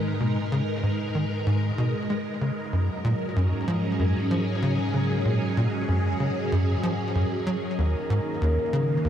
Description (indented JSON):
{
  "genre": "ambient, sequencer-driven space music",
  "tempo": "95 BPM",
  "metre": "4/4",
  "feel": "straight",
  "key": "unclear",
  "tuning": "A4 = 440 Hz",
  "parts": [
    { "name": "phased string machine", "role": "sustained chords", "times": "0.0-9.1 s", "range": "D#3 to E#5", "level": "-28 LUFS", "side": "equal", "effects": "ensemble chorus, phaser" },
    { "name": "tight sequencer bass", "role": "riff", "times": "0.0-9.1 s", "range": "D#2 to G#3", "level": "-25 LUFS", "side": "equal", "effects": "lush chorus, ping-pong delay" },
    { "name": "analog drone", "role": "bass", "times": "0.0-9.1 s", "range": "G#2", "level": "-32 LUFS", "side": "equal", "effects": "chorus" },
    { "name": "wind-like tuned noise texture", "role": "texture", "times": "0.0-9.1 s", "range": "D#5", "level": "-42 LUFS", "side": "right 3 dB", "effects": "built-in reverb" },
    { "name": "soft octave-layered synth lead", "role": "melody", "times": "7.8-9.1 s", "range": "A#4", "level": "-30 LUFS", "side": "left 1 dB", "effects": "chorus, phaser, cassette tape" }
  ],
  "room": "wet huge ambient reverb, RT60 8.8 s",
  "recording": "none",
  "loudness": "-23 LUFS",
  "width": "side -10 dB against mid",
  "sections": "0.0-9.1 A section",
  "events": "fade-in on synth texture 0.0-9.1",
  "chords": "0.0 G#m; 2.7 F#; 7.8 D#m"
}